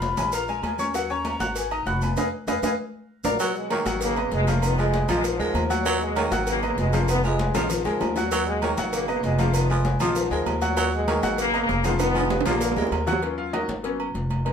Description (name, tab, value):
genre	latin, salsa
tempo	195 BPM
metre	4/4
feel	straight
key	Eb minor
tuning	A4 = 442 Hz
part	breathy mellow jazz flute	melody	0.0-3.3 s	Gb5 to Cb6	-30 LUFS	left 4 dB	none
part	bright upright piano	accompaniment	0.0-14.5 s	F3 to Gb6	-27 LUFS	left 2 dB	none
part	upright bass	bass	0.0-14.5 s	F1 to F2	-27 LUFS	equal	none
part	congas	percussion	0.0-14.5 s	none	-33 LUFS	left 3 dB	none
part	cowbell and bongos	percussion	0.0-14.5 s	none	-34 LUFS	left 6 dB	none
part	maracas	percussion	0.0-13.2 s	none	-38 LUFS	right 2 dB	none
part	agogo bells and timbales	percussion	0.2-14.5 s	none	-32 LUFS	right 6 dB	none
part	bright trombone section	melody	3.3-13.0 s	Ab2 to Cb4	-27 LUFS	equal	none
part	growling baritone saxophone	second line	3.4-13.0 s	Db3 to Ab3	-29 LUFS	right 5 dB	none
room	moderate studio reverb, RT60 0.6 s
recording	minimal, uncompressed stereo recording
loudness	-21 LUFS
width	side -7 dB against mid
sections	0.0-3.4 A section; 3.4-13.2 B section; 13.2-14.5 C section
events	band accent 2.2-3.4; drum fill 2.6-3.4, 7.5-8.3, 12.0-13.2; upright piano solo 13.2-14.5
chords	0.3 Bb5; 0.9 Ebm7; 1.6 Abm7; 2.2 Fm7b5; 2.8 Bb; 3.4 Ebm7; 4.0 Abm7; 4.6 Fm7b5; 5.2 Bb7; 5.9 Ebm7; 6.5 Abm7; 7.1 Fm7b5; 7.7 Bb7; 8.3 Ebm7; 8.9 Abm7; 9.5 Fm7b5; 10.2 Bb7; 10.8 Ebm7; 11.4 Abm11; 12.0 Fm7b5; 12.6 Bb7; 13.2 Ebm7; 13.8 Abm11